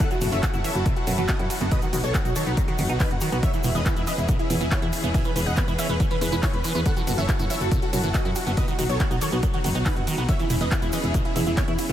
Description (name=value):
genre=uplifting trance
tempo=140 BPM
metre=4/4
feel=straight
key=E major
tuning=A4 = 440 Hz
part: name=big supersaw lead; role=melody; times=0.0-11.9 s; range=D#4 to G#5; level=-30 LUFS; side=right 1 dB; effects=analog chorus, sidechain pumping, analog delay
part: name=analog pluck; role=second line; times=0.0-11.9 s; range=E4 to G#5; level=-34 LUFS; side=equal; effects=chorus, sidechain pumping, diffuse ambient delay
part: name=rich chamber string section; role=sustained chords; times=0.0-11.9 s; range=E3 to A4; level=-32 LUFS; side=left 1 dB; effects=sidechain pumping
part: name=liquid acid bass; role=arpeggios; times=0.0-11.9 s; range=B2 to E4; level=-31 LUFS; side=right 2 dB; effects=phaser, sidechain pumping, diffuse ambient delay
part: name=electronic kick drum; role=drums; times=0.0-11.7 s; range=none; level=-25 LUFS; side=equal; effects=none
part: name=techno drum kit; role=drums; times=0.0-11.9 s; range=handclaps, hi-hat, ride cymbal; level=-33 LUFS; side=equal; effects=none
part: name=egg shaker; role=percussion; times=0.0-11.9 s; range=none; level=-39 LUFS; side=right 1 dB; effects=none
part: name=solid FM bass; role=bass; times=0.2-11.9 s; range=E1 to F#2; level=-26 LUFS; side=equal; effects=sidechain pumping
room=light reverb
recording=none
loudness=-21 LUFS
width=side -11 dB against mid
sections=0.0-11.9 A section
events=none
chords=0.0 F#m7; 1.7 B; 3.4 E6; 6.9 F#m7; 8.6 B; 10.3 E6